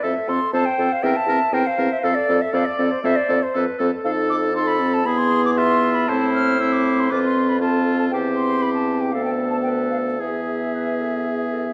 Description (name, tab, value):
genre	quick classical-period movement for wind quintet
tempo	118 BPM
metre	4/4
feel	rubato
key	unclear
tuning	A4 = 440 Hz
part	silver concert flute	melody	0.0-11.7 s	C5 to F6	-26 LUFS	equal	none
part	clear oboe	second line	0.0-11.7 s	E4 to Bb4	-30 LUFS	equal	none
part	bright clarinet	accompaniment	0.0-11.6 s	G4 to E5	-30 LUFS	equal	none
part	dark French horn	accompaniment	0.0-11.7 s	B3 to Eb4	-26 LUFS	equal	none
part	warm bassoon	bass	0.0-11.7 s	D2 to A2	-27 LUFS	equal	none
room	moderate scoring stage reverb, RT60 1.4 s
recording	dark, warm production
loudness	-20 LUFS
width	mono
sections	0.0-11.7 A section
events	none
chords	0.0 F; 1.0 C7/E; 2.0 F; 4.0 F7; 5.1 E; 6.1 Am; 7.1 F; 8.1 C/E; 9.1 D5; 10.2 E